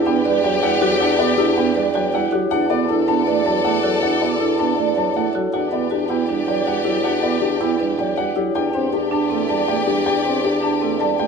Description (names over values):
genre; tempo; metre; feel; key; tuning
classical, minimalist pattern music; 159 BPM; 4/4; straight; E minor; A4 = 445 Hz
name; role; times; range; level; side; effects
dark grand piano; melody; 0.0-11.3 s; G4 to A5; -23 LUFS; left 8 dB; none
warm studio string section; sustained chords; 0.0-11.3 s; G4 to D5; -26 LUFS; left 3 dB; none
marimba with medium mallets; arpeggios; 0.0-11.3 s; C4 to D5; -21 LUFS; right 8 dB; none
mellow bassoon; bass; 0.0-11.3 s; E2; -24 LUFS; right 1 dB; none
pipe organ, flutes; accompaniment; 0.1-11.3 s; F#3 to D4; -25 LUFS; right 1 dB; none
room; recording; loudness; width
moderate recital hall reverb, RT60 1.4 s; close, detailed microphones; -17 LUFS; side -5 dB against mid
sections
0.0-5.5 A section; 5.5-11.3 B section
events
none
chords
0.0 Em7; 2.5 Bm7/E; 5.5 Em7; 8.6 Dsus4/E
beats
0.25 0.63 | 1.00 1.38 1.76 2.14 | 2.51 2.89 3.27 3.65 | 4.02 4.40 4.78 5.16 | 5.53 5.91 6.29 6.67 | 7.04 7.42 7.80 8.18 | 8.55 8.93 9.31 9.68 | 10.06 10.44 10.82 11.19